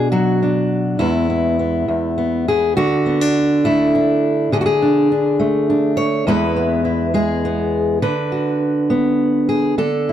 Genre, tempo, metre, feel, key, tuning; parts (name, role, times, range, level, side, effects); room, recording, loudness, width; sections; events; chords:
folk, solo fingerstyle acoustic guitar; 68 BPM (dotted quarters); 6/8; straight; A4 = 440 Hz
fingerpicked steel-string acoustic guitar; solo; 0.0-10.1 s; E2 to C#5; -15 LUFS; equal
studio reverb; dry, close 1970s-style studio recording; -15 LUFS; side -10 dB against mid
0.0-2.8 A section; 2.8-10.1 B section
0.0 Bm; 1.0 E; 2.8 Dsus2; 6.3 E; 8.0 Bm/D